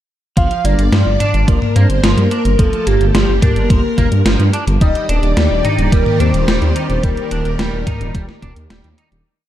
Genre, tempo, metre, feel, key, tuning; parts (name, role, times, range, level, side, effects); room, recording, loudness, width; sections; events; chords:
synthwave; 108 BPM; 4/4; straight; G minor; A4 = 440 Hz
warm velvety synth lead; melody; 0.4-8.7 s; G4 to F5; -20 LUFS; equal; chorus, tremolo, digital delay
string machine, violins; second line; 0.4-8.7 s; G4 to F5; -27 LUFS; equal; ensemble chorus, tape echo
clean electric guitar; arpeggios; 0.4-9.1 s; F3 to Eb4; -25 LUFS; right 2 dB; ensemble chorus, tape echo
wide detuned saw bass; bass; 0.4-9.2 s; Eb1 to G2; -15 LUFS; equal; chorus, sidechain pumping
electronic kick drum; drums; 0.4-8.5 s; -15 LUFS; equal; overdrive
gated 80s digital drum machine; drums; 0.4-9.2 s; hi-hat, snare drum, toms; -19 LUFS; equal; gated reverb, gated reverb snare, overdrive
lush unison pad; sustained chords; 5.0-9.2 s; Eb3 to D5; -23 LUFS; left 1 dB; chorus, phaser, sidechain pumping
digital ambience; dark, warm production; -12 LUFS; side -12 dB against mid
0.4-9.3 verse
fade-out 6.3-9.3
0.4 Gm7; 4.8 Ebmaj7